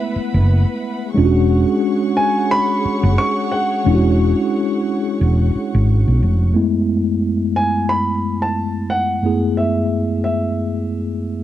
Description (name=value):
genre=R&B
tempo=89 BPM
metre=4/4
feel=swing 56% on 16ths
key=F# minor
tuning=A4 = 440 Hz
part: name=warm grand piano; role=melody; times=0.0-11.4 s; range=E5 to C#6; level=-20 LUFS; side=right 1 dB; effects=none
part: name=mellow tine electric piano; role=accompaniment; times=0.0-11.4 s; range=F#2 to B4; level=-18 LUFS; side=equal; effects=slow stereo tremolo
part: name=dark studio string section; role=sustained chords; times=0.0-6.5 s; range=G#4 to C#6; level=-28 LUFS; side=right 1 dB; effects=none
part: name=woody fretless electric bass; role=bass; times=0.2-6.5 s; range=E1 to B1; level=-14 LUFS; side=equal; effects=none
room=light reverb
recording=dry, close 1970s-style studio recording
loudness=-15 LUFS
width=side -12 dB against mid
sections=0.0-6.5 A section; 6.5-11.4 B section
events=none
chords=0.0 F#m11; 1.2 E13; 6.5 F#m11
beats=0.48 | 1.15 1.83 2.50 3.17 | 3.85 4.52 5.20 5.87 | 6.54 7.22 7.89 8.57 | 9.24 9.92 10.59 11.26